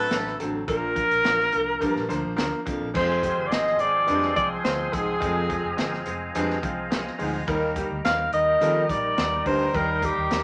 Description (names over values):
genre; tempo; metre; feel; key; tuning
uptempo 1960s-style soul; 106 BPM; 4/4; straight; unclear; A4 = 440 Hz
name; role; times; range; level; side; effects
clear alto saxophone; melody; 0.0-10.4 s; G4 to F5; -26 LUFS; equal; none
warm horn section; second line; 0.0-10.4 s; F3 to Bb4; -35 LUFS; equal; none
bright upright piano; accompaniment; 0.0-10.4 s; F3 to Ab5; -33 LUFS; equal; none
vintage muted fingered electric bass; bass; 0.0-10.4 s; F1 to Eb3; -37 LUFS; equal; none
crunchy breakbeat drum kit; drums; 0.1-10.4 s; crash cymbal, hi-hat, kick drum, snare drum; -33 LUFS; equal; none
warm baritone saxophone; riff; 0.4-10.1 s; D2 to Bb2; -32 LUFS; equal; none
percussive tonewheel organ; sustained chords; 3.0-10.4 s; Eb4 to C6; -38 LUFS; equal; chorus vibrato, slow rotary speaker
room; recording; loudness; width
wet studio reverb, RT60 0.6 s; none; -24 LUFS; mono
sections
0.0-3.0 A section; 3.0-10.4 B section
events
upright piano fill 6.3-7.5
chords
0.0 D7; 0.7 Bb; 3.0 Fm; 7.5 Eb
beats
0.11 | 0.68 1.25 1.82 2.38 | 2.95 3.52 4.08 4.65 | 5.22 5.78 6.35 6.92 | 7.48 8.05 8.61 9.18 | 9.74 10.31